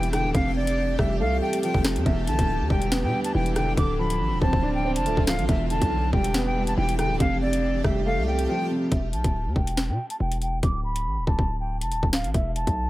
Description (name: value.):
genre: hip hop, drill.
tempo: 140 BPM.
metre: 4/4.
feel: half-time.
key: E phrygian.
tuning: A4 = 440 Hz.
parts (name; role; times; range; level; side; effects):
silver concert flute; melody; 0.0-12.9 s; D5 to D6; -29 LUFS; equal; low-pass filter, dub echo.
dark baby grand piano; accompaniment; 0.0-8.9 s; E2 to D4; -27 LUFS; right 1 dB; none.
granular cloud pad; sustained chords; 0.0-8.9 s; D3 to G4; -34 LUFS; equal; built-in reverb.
hard-hitting 808-style bass; bass; 0.0-12.9 s; D1 to B2; -26 LUFS; equal; none.
drill drum kit; drums; 0.0-12.8 s; hi-hat, kick drum, rim click, snare drum; -25 LUFS; equal; none.
room: little or no reverb.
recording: echo-heavy mix.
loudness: -22 LUFS.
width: side -16 dB against mid.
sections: 0.0-8.9 A section; 8.9-12.9 B section.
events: silent gap 8.5-8.9.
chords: 0.3 Fadd9; 2.1 Em7; 3.8 Dm7; 5.5 Em7; 7.2 Fadd9; 8.9 E5; 10.6 D5; 12.3 E5.